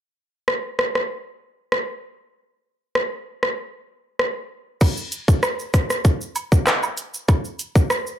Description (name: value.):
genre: dancehall.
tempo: 97 BPM.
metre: 4/4.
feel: straight.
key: none.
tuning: none.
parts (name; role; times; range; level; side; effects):
island pop drum kit; drums; 0.5-8.2 s; crash cymbal, handclaps, hi-hat, kick drum, rim click, shaker; -19 LUFS; equal; none.
woodblock and cabasa; percussion; 4.8-8.1 s; none; -29 LUFS; right 4 dB; none.
room: little or no reverb.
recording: none.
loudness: -20 LUFS.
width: side -10 dB against mid.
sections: 0.0-4.8 A section; 4.8-8.2 B section.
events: none.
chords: none.